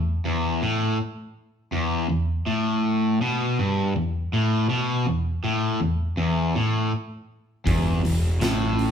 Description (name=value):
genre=blues rock power trio and southern rock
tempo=81 BPM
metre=4/4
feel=straight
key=E minor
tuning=A4 = 440 Hz
part: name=crunchy overdriven guitar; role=riff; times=0.0-8.9 s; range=E2 to B2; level=-22 LUFS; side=equal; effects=none
part: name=fuzz fingered electric bass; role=bass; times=7.7-8.9 s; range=E1 to A1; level=-27 LUFS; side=equal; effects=overdrive
part: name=oversized low-tuned drum kit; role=drums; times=7.7-8.9 s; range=hi-hat, kick drum, snare drum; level=-25 LUFS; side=equal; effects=none
room=moderate large studio reverb, RT60 1.1 s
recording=band playing live in one room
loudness=-21 LUFS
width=side -8 dB against mid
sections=0.0-8.9 A section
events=none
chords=none